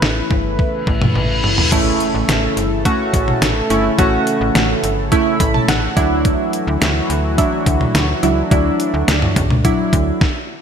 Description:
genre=synth-pop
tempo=106 BPM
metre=4/4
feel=straight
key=unclear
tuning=A4 = 440 Hz
part: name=chorused pulse-width pad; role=sustained chords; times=0.0-10.2 s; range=C#3 to B4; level=-21 LUFS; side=equal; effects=none
part: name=slap-like FM bass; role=bass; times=0.0-10.1 s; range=G1 to D2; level=-20 LUFS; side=equal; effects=none
part: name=detuned 8-bit digital drum machine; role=drums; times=0.0-10.3 s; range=crash cymbal, hi-hat, kick drum, snare drum, toms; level=-18 LUFS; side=equal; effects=overdrive, gated reverb
part: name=reverse cymbal and impact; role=sound effects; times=0.9-4.0 s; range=none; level=-22 LUFS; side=left 1 dB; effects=none
part: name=warm analog keys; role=accompaniment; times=1.7-10.2 s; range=F#3 to B5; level=-18 LUFS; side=right 2 dB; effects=chorus
room=moderate lush hall reverb, RT60 2.0 s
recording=bright 1980s-style digital production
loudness=-14 LUFS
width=side -7 dB against mid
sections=0.0-1.7 A section; 1.7-10.6 B section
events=reverse cymbal 0.9-1.7; drum fill 1.2-1.7; impact 1.7-4.0; synth keys fill 5.1-6.2; stop 10.2-10.6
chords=0.0 A; 6.0 Dadd9

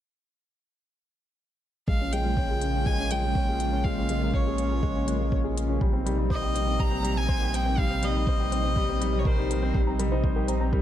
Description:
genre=piano and strings electronica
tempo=122 BPM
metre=4/4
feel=straight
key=Bb dorian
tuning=A4 = 439 Hz
part: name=clear violin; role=melody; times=1.9-9.8 s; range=C5 to Bb5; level=-31 LUFS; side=left 1 dB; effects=digital delay
part: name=lush unison pad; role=sustained chords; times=1.9-10.8 s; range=C3 to F4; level=-32 LUFS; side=right 1 dB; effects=chorus, sidechain pumping
part: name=clear upright piano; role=riff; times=1.9-10.8 s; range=G3 to Db5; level=-30 LUFS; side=left 3 dB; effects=low-pass filter, digital delay
part: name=round analog bass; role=bass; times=1.9-10.8 s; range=Bb1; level=-28 LUFS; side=equal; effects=sidechain pumping
part: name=electronic kick drum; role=drums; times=1.9-10.8 s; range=none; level=-27 LUFS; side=equal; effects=none
part: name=electronic hi-hat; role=drums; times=2.1-10.6 s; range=none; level=-40 LUFS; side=left 4 dB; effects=none
part: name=soft round pluck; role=arpeggios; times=9.8-10.8 s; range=Bb4 to Bb5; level=-35 LUFS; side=right 3 dB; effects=chorus, sidechain pumping, digital delay
room=light reverb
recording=dark, warm production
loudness=-23 LUFS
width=side -11 dB against mid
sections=1.9-10.8 A section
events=filter sweep on upright piano 1.9-10.8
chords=1.9 Bbm7; 5.8 Cm7/Bb

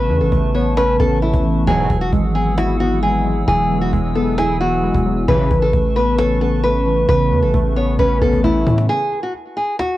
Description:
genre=hip hop, trap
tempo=133 BPM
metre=4/4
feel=half-time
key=A major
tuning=A4 = 436 Hz
part: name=nylon-string guitar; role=melody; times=0.0-10.0 s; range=E4 to C#5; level=-19 LUFS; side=equal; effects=low-pass filter, cassette tape, analog delay
part: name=warbly lo-fi synth keys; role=accompaniment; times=0.0-8.9 s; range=C#3 to E4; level=-20 LUFS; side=equal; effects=chorus, low-pass filter, cassette tape
part: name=warbly tape-like pad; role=sustained chords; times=0.0-8.9 s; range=G#4 to E6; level=-30 LUFS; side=equal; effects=chorus, built-in reverb, cassette tape
part: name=long sustained 808-style bass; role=bass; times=0.0-8.9 s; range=E1 to A2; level=-19 LUFS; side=equal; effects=none
part: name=cajon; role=drums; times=0.1-9.9 s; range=none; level=-24 LUFS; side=equal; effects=cassette tape
part: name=big bright polysynth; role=stabs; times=1.7-1.9, 5.3-5.5 s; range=G#2 to F#3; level=-21 LUFS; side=equal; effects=lush chorus, cassette tape
room=light reverb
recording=home recording on cassette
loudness=-14 LUFS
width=side -15 dB against mid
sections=0.0-8.9 A section; 8.9-10.0 B section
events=drum fill 8.0-8.9; break 8.9-10.0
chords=0.0 Aadd9; 1.7 Eadd9; 5.3 Aadd9; 8.9 N.C.

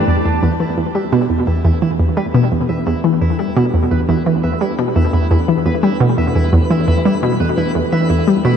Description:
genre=ambient, sequencer-driven space music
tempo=86 BPM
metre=4/4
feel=straight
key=E minor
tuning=A4 = 441 Hz
part: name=sweeping resonant pad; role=sustained chords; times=0.0-8.6 s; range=E3 to B4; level=-23 LUFS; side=left 2 dB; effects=chorus, shimmer reverb
part: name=electric guitar at the edge of break-up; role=arpeggios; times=0.1-8.6 s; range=E4 to E5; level=-28 LUFS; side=right 2 dB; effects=auto-pan, analog delay, shimmer reverb
part: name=analog pluck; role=riff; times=0.1-8.6 s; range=E2 to G3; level=-14 LUFS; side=equal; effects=chorus, analog delay
part: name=twinkling granular texture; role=texture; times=1.2-8.6 s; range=B4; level=-30 LUFS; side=equal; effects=built-in reverb, shimmer reverb
room=wet lush hall reverb, RT60 2.7 s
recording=dreamy mix soaked in reverb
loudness=-13 LUFS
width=side -8 dB against mid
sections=0.1-8.6 A section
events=fade-in on clean electric guitar 0.1-8.6; fade-in on analog synth pad 0.1-8.6; fade-in on synth texture 0.1-8.6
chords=0.1 Em

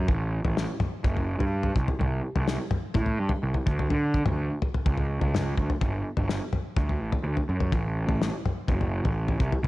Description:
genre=psychedelic rock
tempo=126 BPM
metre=4/4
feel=straight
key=unclear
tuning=A4 = 439 Hz
part: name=fuzz picked electric bass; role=bass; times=0.0-9.7 s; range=F#1 to D3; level=-27 LUFS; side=right 1 dB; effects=overdrive
part: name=cloth-damped thuddy drum kit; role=drums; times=0.1-9.7 s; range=kick drum, snare drum, toms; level=-27 LUFS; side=left 1 dB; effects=none
room=light reverb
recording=1960s-style stereo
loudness=-24 LUFS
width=side -18 dB against mid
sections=0.0-9.7 A section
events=none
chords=none

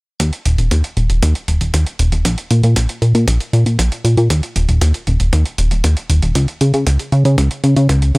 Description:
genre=italo disco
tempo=117 BPM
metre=4/4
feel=straight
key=unclear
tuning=A4 = 440 Hz
part: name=chorused synth bass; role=bass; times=0.2-8.2 s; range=Eb1 to Db3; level=-12 LUFS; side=equal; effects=none
part: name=electronic hi-hat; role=drums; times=0.2-8.2 s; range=none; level=-24 LUFS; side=right 2 dB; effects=overdrive, small room reverb
part: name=electronic kick drum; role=drums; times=0.2-8.0 s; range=none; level=-25 LUFS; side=equal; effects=overdrive, high-pass filter on kick, small room reverb
room=little or no reverb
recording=dry, gritty hardware recording, transformer saturation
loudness=-13 LUFS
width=side -27 dB against mid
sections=0.2-8.2 A section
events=none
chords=none

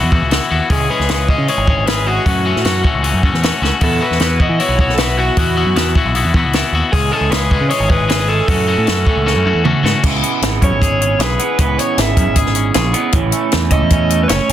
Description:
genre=indie rock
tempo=154 BPM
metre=4/4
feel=straight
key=unclear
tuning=A4 = 440 Hz
part: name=twangy electric guitar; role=riff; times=0.0-14.5 s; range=E3 to G#4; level=-18 LUFS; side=left 4 dB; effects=spring reverb
part: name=growling picked electric bass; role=bass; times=0.0-14.5 s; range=F#1 to E3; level=-18 LUFS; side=equal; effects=overdrive
part: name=compact cocktail drum kit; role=drums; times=0.1-14.5 s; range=crash cymbal, hi-hat, kick drum, snare drum, toms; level=-17 LUFS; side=equal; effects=soft clipping on snare
part: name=raw garage guitar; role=melody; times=0.7-14.5 s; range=F#4 to E5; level=-20 LUFS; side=right 2 dB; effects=overdrive, plate reverb, digital delay
part: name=electric guitar through a small old amp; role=riff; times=10.0-14.5 s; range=F#2 to E4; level=-20 LUFS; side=right 13 dB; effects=lush chorus
room=light reverb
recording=dense, heavily limited modern master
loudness=-12 LUFS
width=side -11 dB against mid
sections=0.0-10.0 A section; 10.0-14.5 B section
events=drum fill 3.6, 9.3-10.0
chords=0.0 Esus2; 0.7 C#m; 2.3 F#m7; 3.8 Esus2; 6.9 C#m; 8.5 F#m7; 10.0 C#m7; 13.1 F#m7 (rootless)

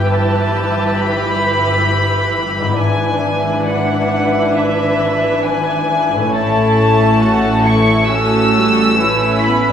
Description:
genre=classical, slow romantic movement for symphony orchestra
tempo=67 BPM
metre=4/4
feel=rubato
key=unclear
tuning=A4 = 442 Hz
part: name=warm studio violin section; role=melody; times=0.0-9.7 s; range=E5 to E6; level=-18 LUFS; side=left 1 dB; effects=none
part: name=warm studio violin section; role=second line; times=0.0-9.7 s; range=C#4 to B4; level=-19 LUFS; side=left 1 dB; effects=none
part: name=dark studio viola section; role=accompaniment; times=0.0-9.7 s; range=E3 to F#4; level=-19 LUFS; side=equal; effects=none
part: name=concert harp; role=arpeggios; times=0.0-9.7 s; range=G2 to D5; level=-24 LUFS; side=left 4 dB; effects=none
part: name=warm studio cello section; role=bass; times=0.0-9.7 s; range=G2 to A2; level=-23 LUFS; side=right 3 dB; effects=none
part: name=warm studio double bass section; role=bass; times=0.0-9.7 s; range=G1 to A1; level=-21 LUFS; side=right 1 dB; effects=none
room=wet recital hall reverb, RT60 1.4 s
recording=heard from further back in the room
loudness=-12 LUFS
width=side -8 dB against mid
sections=0.0-9.7 A section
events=none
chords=0.0 Em/G; 2.8 E7/G#; 6.3 A

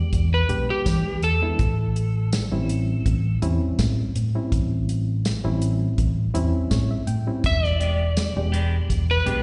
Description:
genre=straight-eighth soul blues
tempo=82 BPM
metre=4/4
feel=swing 54% on 16ths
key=unclear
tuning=A4 = 437 Hz
part: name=electric slide guitar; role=melody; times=0.0-9.4 s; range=G4 to E5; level=-29 LUFS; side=equal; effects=slapback echo
part: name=barky reed electric piano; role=accompaniment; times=0.0-9.4 s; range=G3 to G5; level=-32 LUFS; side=equal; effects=overdrive, fast tremolo, slapback echo
part: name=fingered electric bass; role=bass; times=0.1-9.4 s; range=E1 to E3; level=-25 LUFS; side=equal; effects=none
part: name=warm soul drum kit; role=drums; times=0.1-9.4 s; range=hi-hat, kick drum, snare drum, tambourine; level=-27 LUFS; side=equal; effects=slapback echo
part: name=clean electric guitar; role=stabs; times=7.8-9.4 s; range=G#3 to G4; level=-36 LUFS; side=equal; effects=slapback echo
room=studio reverb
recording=live gig heard through the venue's PA, recital hall reverb, nothing above 10.5 kHz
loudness=-23 LUFS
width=mono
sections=0.0-9.4 A section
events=reed electric piano fill 6.3-7.4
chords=0.0 E7#9; 1.6 A7#9; 7.4 E7#9

